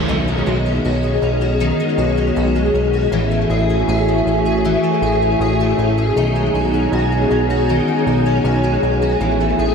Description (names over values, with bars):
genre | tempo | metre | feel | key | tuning
dream pop | 79 BPM | 4/4 | straight | B mixolydian | A4 = 440 Hz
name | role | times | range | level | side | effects
crunchy overdriven guitar | accompaniment | 0.0-0.6 s | G#3 to E4 | -28 LUFS | right 4 dB | tremolo, ensemble chorus
warbly tape-like pad | sustained chords | 0.0-9.7 s | A3 to G#5 | -20 LUFS | right 1 dB | chorus, built-in reverb
fingerpicked twelve-string acoustic guitar | arpeggios | 0.0-9.7 s | D#3 to G#4 | -18 LUFS | left 2 dB | ensemble chorus, ping-pong delay
fat analog bass | bass | 0.0-9.7 s | A1 to B1 | -19 LUFS | equal | none
room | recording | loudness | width
moderate huge ambient reverb, RT60 5.1 s | none | -14 LUFS | side -6 dB against mid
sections
0.1-9.7 A section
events
none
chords
0.1 B69; 3.1 F#m9/A; 6.2 B69; 9.2 F#m9/A